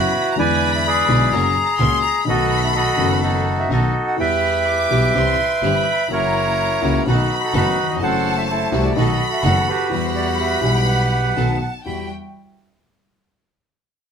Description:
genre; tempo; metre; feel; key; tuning
tango; 126 BPM; 4/4; rubato; E minor; A4 = 441 Hz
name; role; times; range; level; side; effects
bandoneon; melody; 0.0-12.1 s; D#4 to B5; -19 LUFS; right 1 dB; none
clear studio violin section; second line; 0.0-12.1 s; G5 to D6; -25 LUFS; left 2 dB; none
warm concert grand piano; accompaniment; 0.0-12.1 s; F#1 to F#5; -23 LUFS; left 3 dB; none
rich symphonic string section; stabs; 0.0-12.1 s; G3 to F#5; -30 LUFS; left 1 dB; none
warm double bass; bass; 0.0-12.1 s; F#1 to E2; -22 LUFS; right 2 dB; none
room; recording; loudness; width
moderate studio reverb, RT60 0.7 s; band playing live in one room; -16 LUFS; side -7 dB against mid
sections
0.0-11.9 A section; 11.9-13.8 B section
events
none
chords
0.4 E7; 1.3 F#; 2.3 B7; 4.2 Em; 5.2 C; 6.1 F#7; 7.1 B7; 8.0 F#m7b5; 9.0 B7; 9.9 Emadd9; 11.4 B7; 11.9 Emadd9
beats
| 0.38 0.85 1.32 1.79 | 2.27 2.75 3.22 3.71 | 4.19 4.68 5.16 5.63 | 6.11 6.59 7.06 7.54 | 8.01 8.48 8.96 9.43 | 9.91 10.39 10.87 11.37 | 11.86

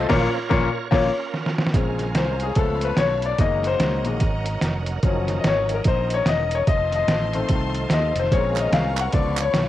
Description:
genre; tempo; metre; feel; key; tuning
uptempo gospel; 146 BPM; 4/4; swing 60% on 8ths; Bb minor; A4 = 441 Hz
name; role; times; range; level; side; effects
clear baby grand piano; accompaniment; 0.0-9.7 s; Bb2 to Gb5; -22 LUFS; left 5 dB; cassette tape
bright tonewheel organ; sustained chords; 0.0-9.7 s; Eb3 to Db5; -32 LUFS; right 8 dB; slow rotary speaker, overdrive, chorus vibrato, cassette tape
fingered electric bass; bass; 0.0-9.7 s; E1 to Eb2; -26 LUFS; right 1 dB; none
trip hop sampler-style drum kit; drums; 0.1-9.7 s; crash cymbal, hi-hat, kick drum, snare drum; -23 LUFS; right 1 dB; overdrive, cassette tape
bright studio string section; sustained chords; 1.7-9.7 s; D4 to Db6; -34 LUFS; left 1 dB; cassette tape
group handclap; percussion; 8.6-9.5 s; none; -30 LUFS; right 8 dB; none
room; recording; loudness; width
light reverb; home recording on cassette; -19 LUFS; side -13 dB against mid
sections
0.0-1.7 A section; 1.7-9.7 B section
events
tonewheel organ solo 0.0-1.7; band accent 0.1-1.7; drum fill 1.3-1.7; grand piano solo 1.7-9.7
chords
0.1 Bbm; 1.7 Bbm7; 2.6 Dbaug7; 3.4 Gb6; 5.0 Ebm7/Gb; 6.7 F7; 8.3 Bbm7; 9.1 Db7b9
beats
| 0.10 0.51 0.92 1.33 | 1.74 2.15 2.56 2.98 | 3.39 3.80 4.21 4.62 | 5.03 5.44 5.85 6.26 | 6.67 7.08 7.49 7.91 | 8.31 8.72 9.13 9.54

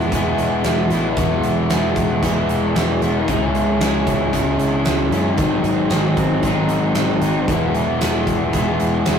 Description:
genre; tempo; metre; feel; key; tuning
rock, shoegaze and dream pop; 114 BPM; 4/4; straight; E major; A4 = 440 Hz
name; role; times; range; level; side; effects
electric guitar through a small old amp; arpeggios; 0.0-9.2 s; F#3 to G#4; -30 LUFS; right 2 dB; none
crunchy overdriven guitar; riff; 0.0-9.2 s; E2 to G#4; -24 LUFS; right 6 dB; none
overdriven electric guitar; riff; 0.0-9.2 s; G#2 to E4; -19 LUFS; left 3 dB; none
vintage muted picked electric bass; bass; 0.0-9.2 s; E1 to F#2; -24 LUFS; right 1 dB; none
huge arena drum kit; drums; 0.0-9.2 s; hi-hat, kick drum, snare drum; -23 LUFS; right 1 dB; none
room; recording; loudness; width
moderate studio reverb, RT60 0.5 s; rough rehearsal-room recording, warm saturation; -16 LUFS; side -7 dB against mid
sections
0.0-9.2 A section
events
none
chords
0.0 Eadd9; 3.3 C#m7; 5.4 G#7; 7.5 Eadd9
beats
0.13 0.66 | 1.18 1.71 2.24 2.76 | 3.29 3.81 4.34 4.87 | 5.39 5.92 6.44 6.97 | 7.50 8.02 8.55 9.07

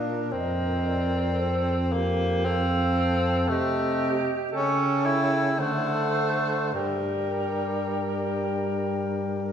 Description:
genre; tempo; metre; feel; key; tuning
classical, lyrical piece for single-reed quartet; 51-59 BPM; 3/4; rubato; G minor from 3.5 s; A4 = 441 Hz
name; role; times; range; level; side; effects
mellow clarinet; melody; 0.0-9.4 s; C5 to G5; -34 LUFS; left 3 dB; none
clear alto saxophone; second line; 0.0-9.5 s; G4 to C5; -31 LUFS; right 4 dB; none
warm tenor saxophone; accompaniment; 0.0-9.5 s; G3 to E4; -27 LUFS; left 1 dB; none
warm baritone saxophone; bass; 0.0-9.5 s; F2 to D3; -28 LUFS; equal; none
room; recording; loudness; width
wet recital hall reverb, RT60 1.9 s; heard from further back in the room; -23 LUFS; side -8 dB against mid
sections
0.0-9.5 A section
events
none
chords
0.3 F; 3.5 Am7b5/C; 4.5 A7/C#; 5.6 D7; 6.7 Gm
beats
| 0.33 1.39 2.46 | 3.49 4.53 5.60 | 6.73 7.88 9.03

